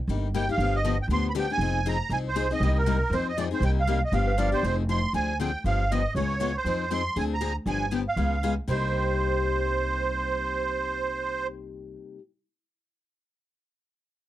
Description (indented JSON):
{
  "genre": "acoustic string swing (jazz manouche)",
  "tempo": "237 BPM",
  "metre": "4/4",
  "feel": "swing 57% on 8ths",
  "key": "C minor",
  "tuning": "A4 = 440 Hz",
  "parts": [
    { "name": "picked steel-string acoustic guitar", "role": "accompaniment", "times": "0.1-12.2 s", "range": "C3 to Ab4", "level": "-31 LUFS", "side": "left 7 dB", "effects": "none" },
    { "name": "upright bass", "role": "bass", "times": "0.1-12.0 s", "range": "F1 to F2", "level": "-28 LUFS", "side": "right 1 dB", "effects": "none" },
    { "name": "musette accordion", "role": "melody", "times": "0.4-11.5 s", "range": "Bb4 to C6", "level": "-28 LUFS", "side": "right 4 dB", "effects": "none" },
    { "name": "breathy clarinet", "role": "second line", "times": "4.3-4.6 s", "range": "B4 to D5", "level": "-30 LUFS", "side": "right 2 dB", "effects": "none" }
  ],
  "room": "little or no reverb",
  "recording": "dry, close 1970s-style studio recording",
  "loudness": "-24 LUFS",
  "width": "side -13 dB against mid",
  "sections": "0.0-4.6 A section; 4.6-8.7 B section; 8.7-10.7 C section",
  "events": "none",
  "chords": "0.0 Cm7; 0.6 G7; 1.6 Fm7; 2.6 Cm7; 3.1 Fm7; 3.6 Cm7; 4.1 G7; 4.6 Fm7; 5.1 Dm7b5; 5.6 G7b13; 6.1 Db7; 6.7 Fm7; 7.2 Dm7b5; 7.7 G7b9; 8.2 Db7; 8.7 Cm7",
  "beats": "0.08 0.33 | 0.58 0.84 1.09 1.34 | 1.60 1.85 2.10 2.35 | 2.61 2.86 3.11 3.37 | 3.62 3.87 4.12 4.38 | 4.63 4.88 5.14 5.39 | 5.64 5.89 6.15 6.40 | 6.65 6.91 7.16 7.41 | 7.67 7.92 8.17 8.42 | 8.68 8.93 9.18 9.44 | 9.69 9.94 10.20 10.45"
}